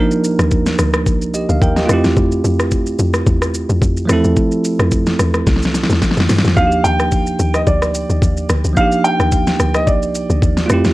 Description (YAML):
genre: amapiano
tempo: 109 BPM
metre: 4/4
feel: swing 55% on 16ths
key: Eb major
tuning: A4 = 440 Hz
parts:
  - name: bell-like tine electric piano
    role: accompaniment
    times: 0.0-10.9 s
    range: F3 to G5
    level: -18 LUFS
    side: right 2 dB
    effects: none
  - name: smooth R&B drum kit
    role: drums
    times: 0.1-10.9 s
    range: hi-hat, kick drum, rim click, shaker, snare drum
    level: -17 LUFS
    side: equal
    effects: overdrive
  - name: woody log drum bass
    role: bass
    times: 0.4-10.9 s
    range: C2 to G2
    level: -17 LUFS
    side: equal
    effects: none
  - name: warm baby grand piano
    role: melody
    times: 6.6-10.7 s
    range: D5 to G5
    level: -18 LUFS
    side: equal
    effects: tape echo
room: digital ambience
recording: worn, warbling old tape, cassette tape, warbly pitch drift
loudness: -13 LUFS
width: side -18 dB against mid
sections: 0.0-10.9 A section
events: drum fill 5.5-6.6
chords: 0.0 Ebmaj9; 1.9 Fmaj9; 6.6 Ebmaj9